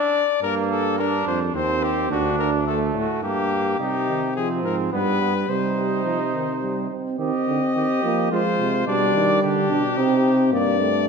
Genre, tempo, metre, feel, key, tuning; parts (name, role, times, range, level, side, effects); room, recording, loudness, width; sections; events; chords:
classical, imitative canzona for brass ensemble; 107 BPM; 3/4; straight; G minor, C minor from 3.8 s; A4 = 438 Hz
clear trumpet; melody; 0.0-11.1 s; F#4 to Eb5; -24 LUFS; left 8 dB
mellow trumpet; second line; 0.0-10.5 s; A3 to G4; -26 LUFS; right 5 dB
warm bass trombone; bass; 0.4-11.1 s; D2 to F3; -26 LUFS; right 2 dB
warm euphonium; accompaniment; 3.8-11.1 s; Eb3 to D4; -23 LUFS; right 2 dB
wet scoring stage reverb, RT60 1.9 s; minimal, uncompressed stereo recording; -19 LUFS; side -5 dB against mid
0.0-3.8 A section; 3.8-7.2 B section; 7.2-11.1 C section
0.4 Gm; 1.6 Cm/Eb; 2.1 D; 3.2 Gm; 3.8 Cm; 4.4 Fm/C; 4.9 G; 5.5 Cm; 8.3 Fm; 8.9 G/B; 10.0 Cm; 10.5 Gm